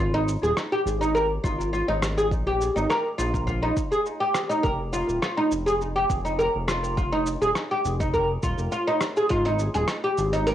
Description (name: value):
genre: organic downtempo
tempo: 103 BPM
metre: 4/4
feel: swing 53% on 16ths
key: F minor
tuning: A4 = 439 Hz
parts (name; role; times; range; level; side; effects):
- oud; arpeggios; 0.0-10.5 s; Eb4 to Bb4; -23 LUFS; equal; cassette tape, tape echo
- smooth synth bass; bass; 0.0-10.5 s; Eb1 to Bb1; -28 LUFS; equal; transformer saturation
- dusty soul sampler-style drum kit; drums; 0.3-10.5 s; hi-hat, rim click, shaker; -31 LUFS; equal; overdrive, studio reverb, cassette tape
- electronic kick drum; drums; 1.4-9.4 s; none; -29 LUFS; equal; studio reverb, cassette tape
room: wet small room reverb, RT60 0.6 s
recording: home recording on cassette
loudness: -22 LUFS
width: side -11 dB against mid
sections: 0.0-10.5 A section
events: none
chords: 0.0 Ab5; 2.3 Bb5; 4.6 Fm7